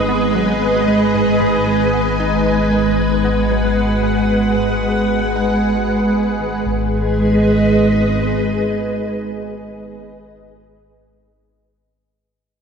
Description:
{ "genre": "ambient, sequencer-driven space music", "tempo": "114 BPM", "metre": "4/4", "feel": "straight", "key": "G# minor", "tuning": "A4 = 442 Hz", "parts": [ { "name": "string machine, full ensemble", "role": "sustained chords", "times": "0.0-10.1 s", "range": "G#3 to F#5", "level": "-15 LUFS", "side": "right 1 dB", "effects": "ensemble chorus" }, { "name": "analog drone", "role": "bass", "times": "0.0-8.2 s", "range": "G#1", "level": "-22 LUFS", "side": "left 1 dB", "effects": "chorus, phaser" }, { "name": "tight sequenced synth", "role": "riff", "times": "0.1-6.9 s", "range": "G#2 to D#4", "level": "-26 LUFS", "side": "right 1 dB", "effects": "none" } ], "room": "wet lush hall reverb, RT60 2.6 s", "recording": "dreamy mix soaked in reverb", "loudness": "-14 LUFS", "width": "side -6 dB against mid", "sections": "0.0-6.7 A section; 6.7-10.9 B section", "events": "fade-out on synth arpeggio sound 0.0-6.7", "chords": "0.0 G#m" }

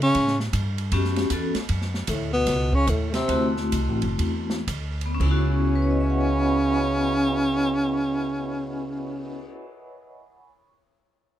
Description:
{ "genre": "jazz, small-group swing and bop", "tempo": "110-156 BPM", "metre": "4/4", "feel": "swing 64% on 8ths", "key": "C# minor", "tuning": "A4 = 440 Hz", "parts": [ { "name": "breathy tenor saxophone", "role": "melody", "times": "0.0-9.5 s", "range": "A3 to C#4", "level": "-24 LUFS", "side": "left 1 dB", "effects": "none" }, { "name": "warm trombone", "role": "second line", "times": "0.0-9.5 s", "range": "A2 to C#3", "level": "-30 LUFS", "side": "right 4 dB", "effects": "none" }, { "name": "upright bass", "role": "bass", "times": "0.0-9.5 s", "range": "F#1 to C#3", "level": "-26 LUFS", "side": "equal", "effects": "none" }, { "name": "open jazz drum kit", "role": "drums", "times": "0.0-9.5 s", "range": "crash cymbal, cymbal swell, hi-hat, kick drum, ride cymbal, snare drum", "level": "-32 LUFS", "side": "right 1 dB", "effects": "none" }, { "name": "vibraphone with medium hard mallets", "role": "accompaniment", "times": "0.9-10.7 s", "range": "A3 to C#6", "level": "-28 LUFS", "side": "left 2 dB", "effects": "none" } ], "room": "little or no reverb", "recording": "close, detailed microphones", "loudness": "-21 LUFS", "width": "side -12 dB against mid", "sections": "0.0-5.2 A section; 5.2-9.6 B section", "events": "slowing down 1.7-5.2", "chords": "0.2 A13; 1.7 F#5; 3.3 D9; 5.2 C#m11" }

